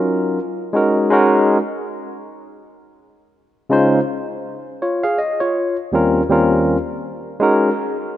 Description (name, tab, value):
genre	hip hop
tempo	81 BPM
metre	4/4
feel	swing 58% on 16ths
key	unclear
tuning	A4 = 439 Hz
part	barky tine electric piano	solo	0.0-7.7 s	Eb2 to F5	-16 LUFS	equal	medium stereo tremolo, analog delay
room	moderate lush hall reverb, RT60 2.7 s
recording	rough home demo mix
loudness	-15 LUFS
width	side -12 dB against mid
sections	0.0-8.2 A section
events	none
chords	0.4 Ab7sus4; 2.6 Db; 4.1 N.C.; 5.6 Eb13; 7.0 Ab7sus4